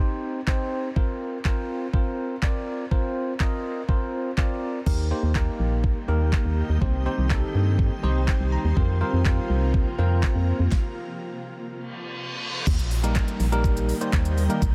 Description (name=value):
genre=dance-pop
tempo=123 BPM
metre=4/4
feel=straight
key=unclear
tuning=A4 = 440 Hz
part: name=bell-like tine electric piano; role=accompaniment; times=0.0-14.6 s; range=G3 to Bb5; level=-32 LUFS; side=equal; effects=subtle chorus, sidechain pumping
part: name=smooth R&B drum kit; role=drums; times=0.5-14.7 s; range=crash cymbal, handclaps, hi-hat, kick drum, shaker, snare drum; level=-27 LUFS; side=equal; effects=none
part: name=granular cloud pad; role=sustained chords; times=6.0-14.7 s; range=C3 to G4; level=-35 LUFS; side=equal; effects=built-in reverb, sidechain pumping
part: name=organ-like FM bass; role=bass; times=4.9-14.7 s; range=Bb1 to G2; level=-25 LUFS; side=equal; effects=sidechain pumping
part: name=reverse cymbal and downlifter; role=sound effects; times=11.9-14.7 s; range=none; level=-36 LUFS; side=equal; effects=none
part: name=group handclap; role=percussion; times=13.2-14.2 s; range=none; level=-45 LUFS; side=equal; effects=none
room=light reverb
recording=none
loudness=-24 LUFS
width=mono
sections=0.0-4.9 A section; 4.9-12.7 B section; 12.7-14.7 C section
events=tine electric piano fill 7.8-8.8; stop 10.7-12.7; reverse cymbal 11.9-12.7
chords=0.0 Cm; 1.0 Fsus4; 2.9 Bbsus2; 4.9 Eb; 6.8 Cm; 8.8 Fsus4; 10.7 N.C.; 12.7 Eb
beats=0.47 | 0.96 1.45 1.94 2.42 | 2.91 3.40 3.89 4.38 | 4.86 5.35 5.84 6.33 | 6.82 7.30 7.79 8.28 | 8.77 9.25 9.74 10.23 | 10.72 11.21 11.69 12.18 | 12.67 13.16 13.64 14.13 | 14.62